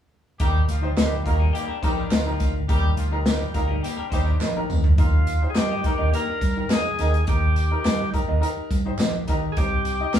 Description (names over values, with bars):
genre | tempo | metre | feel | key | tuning
uptempo 1960s-style soul | 105 BPM | 4/4 | straight | Eb major | A4 = 440 Hz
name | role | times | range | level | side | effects
clear horn section | second line | 0.4-4.4 s | F3 to Bb4 | -32 LUFS | left 2 dB | none
clear baby grand piano | accompaniment | 0.4-10.2 s | C3 to Eb5 | -30 LUFS | left 3 dB | none
vintage muted fingered electric bass | bass | 0.4-10.2 s | Bb1 to Eb3 | -24 LUFS | equal | none
natural country drum kit | drums | 0.4-10.2 s | hi-hat, kick drum, snare drum, toms | -23 LUFS | equal | none
tambourine and handclaps | percussion | 0.7-10.2 s | none | -39 LUFS | right 4 dB | none
electric guitar through a small old amp | stabs | 1.0-10.2 s | Eb4 to Eb5 | -31 LUFS | right 6 dB | spring reverb, slapback echo
semi-hollow electric guitar | riff | 1.2-7.1 s | G3 to Eb5 | -33 LUFS | left 1 dB | none
overdriven tonewheel organ | melody | 5.0-10.2 s | F4 to Bb4 | -27 LUFS | left 1 dB | slow rotary speaker
room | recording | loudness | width
moderate studio reverb, RT60 0.6 s | band playing live in one room, small room ambience | -20 LUFS | side -10 dB against mid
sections
0.4-5.0 A section; 5.0-10.2 B section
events
drum fill 4.4-5.0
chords
0.4 Eb; 9.6 Cm